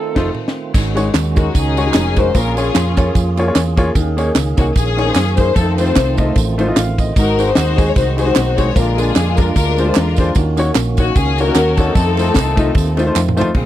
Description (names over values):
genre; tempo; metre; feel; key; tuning
uptempo gospel; 150 BPM; 4/4; swing 55% on 8ths; unclear; A4 = 439 Hz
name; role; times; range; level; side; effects
warm studio string section; melody; 0.0-13.2 s; C4 to Db5; -19 LUFS; left 5 dB; none
percussive tonewheel organ; sustained chords; 0.0-13.7 s; Db3 to Ab4; -24 LUFS; right 6 dB; slow rotary speaker, overdrive
clear upright piano; accompaniment; 0.2-13.7 s; Ab2 to F5; -20 LUFS; left 2 dB; none
hollow-body short-scale fingered electric bass; bass; 0.2-13.7 s; F1 to Gb2; -18 LUFS; equal; none
tight funk drum kit; drums; 0.2-13.7 s; crash cymbal, kick drum, ride cymbal, snare drum, toms; -16 LUFS; equal; none
tambourine and handclaps; percussion; 0.8-13.5 s; none; -27 LUFS; right 25 dB; none
room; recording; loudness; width
little or no reverb; dry, close 1970s-style studio recording; -12 LUFS; side -13 dB against mid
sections
0.7-13.6 A section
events
drum fill 0.0-0.7, 13.2-13.6; band accent 0.0-0.7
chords
0.0 F7; 0.7 Ab7sus4; 2.4 Bbm7; 4.0 Eb7sus4; 5.6 F7; 7.2 Ab7; 8.8 Bb7; 10.4 Ebm7; 12.0 F7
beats
0.34 | 0.74 1.14 1.55 1.95 | 2.35 2.75 3.15 3.56 | 3.96 4.36 4.76 5.16 | 5.56 5.96 6.36 6.76 | 7.16 7.56 7.96 8.36 | 8.76 9.16 9.56 9.96 | 10.36 10.76 11.16 11.56 | 11.96 12.35 12.75 13.15 | 13.55